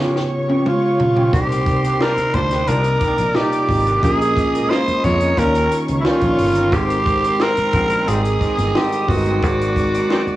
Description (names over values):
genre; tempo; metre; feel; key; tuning
lush 1970s-style soul; 89 BPM; 4/4; straight; unclear; A4 = 440 Hz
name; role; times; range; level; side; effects
growling tenor saxophone; melody; 0.0-10.4 s; E4 to Db5; -18 LUFS; right 1 dB; cassette tape
warm studio violin section; second line; 0.0-10.4 s; C5 to Eb6; -29 LUFS; equal; cassette tape
bell-like tine electric piano; accompaniment; 0.0-10.4 s; C3 to G5; -24 LUFS; equal; medium stereo tremolo, cassette tape
electric guitar through a small old amp; riff; 0.0-10.3 s; Eb3 to C5; -30 LUFS; right 3 dB; ensemble chorus, cassette tape
compact cocktail drum kit; drums; 0.2-10.4 s; hi-hat, kick drum, snare drum, toms; -22 LUFS; equal; cassette tape
warm studio string section; sustained chords; 1.3-10.4 s; C3 to D5; -30 LUFS; right 1 dB; none
fingered electric bass; bass; 1.3-10.3 s; G1 to F2; -21 LUFS; equal; none
brilliant trombone section; stabs; 2.0-10.2 s; Gb2 to F4; -25 LUFS; left 1 dB; cassette tape
room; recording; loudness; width
light reverb, small room ambience; home recording on cassette; -15 LUFS; side -15 dB against mid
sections
0.0-10.4 A section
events
drum fill 0.0-1.3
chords
0.0 C#7#11; 1.3 Cm9; 4.0 Bbm7; 5.4 Eb7; 6.7 Abmaj7; 9.4 Ab9